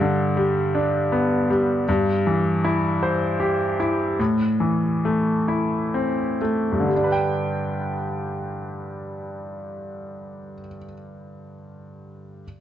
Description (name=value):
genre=folk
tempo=59-80 BPM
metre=3/4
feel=straight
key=G major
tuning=A4 = 440 Hz
part: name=bright grand piano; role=melody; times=0.0-12.5 s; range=G2 to G5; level=-21 LUFS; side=equal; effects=none
room=light reverb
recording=worn, warbling old tape, cassette tape, warbly pitch drift, nothing above 8.0 kHz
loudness=-20 LUFS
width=side -11 dB against mid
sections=0.0-6.9 A section; 6.9-9.9 B section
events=slowing down 1.9-6.9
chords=0.0 G; 1.9 C/G; 4.2 Am; 6.9 G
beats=0.37 1.12 | 1.87 2.63 3.40 | 4.20 5.04 5.94 | 6.91 7.92 8.92